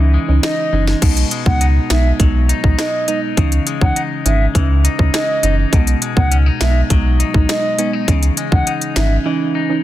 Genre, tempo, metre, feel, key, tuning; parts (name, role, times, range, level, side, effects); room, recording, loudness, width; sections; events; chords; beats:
dancehall; 102 BPM; 4/4; straight; B major; A4 = 440 Hz
soft round pluck; accompaniment; 0.0-9.8 s; E3 to D#4; -21 LUFS; right 4 dB; chorus
clean electric guitar; arpeggios; 0.0-9.8 s; B2 to D#4; -23 LUFS; left 9 dB; spring reverb, ping-pong delay
sub bass with octave; bass; 0.0-9.2 s; F#1 to C#2; -14 LUFS; equal
mellow wooden flute; melody; 0.4-9.2 s; D#5 to F#5; -22 LUFS; right 1 dB; ping-pong delay
island pop drum kit; drums; 0.4-9.1 s; crash cymbal, finger snaps, hi-hat, kick drum, rim click, snare drum; -16 LUFS; equal; overdrive
little or no reverb; dense, heavily limited modern master; -13 LUFS; side -14 dB against mid
0.0-1.0 A section; 1.0-9.8 B section
break 0.0-1.0
0.0 C#madd9; 1.0 B6; 3.4 C#madd9; 5.7 B6; 8.1 C#madd9
0.43 | 1.02 1.61 2.20 2.79 | 3.37 3.96 4.55 5.14 | 5.73 6.32 6.90 7.49 | 8.08 8.67 9.26